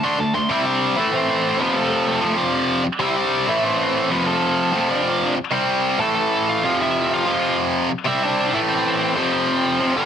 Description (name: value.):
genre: punk.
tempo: 190 BPM.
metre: 4/4.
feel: straight.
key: unclear.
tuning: A4 = 440 Hz.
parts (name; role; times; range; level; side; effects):
nasal lead guitar with a parked wah; melody; 0.0-10.1 s; A3 to C6; -22 LUFS; right 1 dB; overdrive.
tight distorted guitar; riff; 0.0-10.1 s; F2 to D4; -19 LUFS; equal; distortion.
room: moderate studio reverb, RT60 0.8 s.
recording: heavily compressed radio sound.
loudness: -17 LUFS.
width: side -8 dB against mid.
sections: 0.5-10.1 A section.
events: none.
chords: 0.5 C; 1.0 Am; 1.6 F; 3.0 C; 3.5 Am; 4.1 F; 5.5 C5; 6.0 A5; 6.6 F5; 8.1 C; 8.5 Am; 9.2 F5.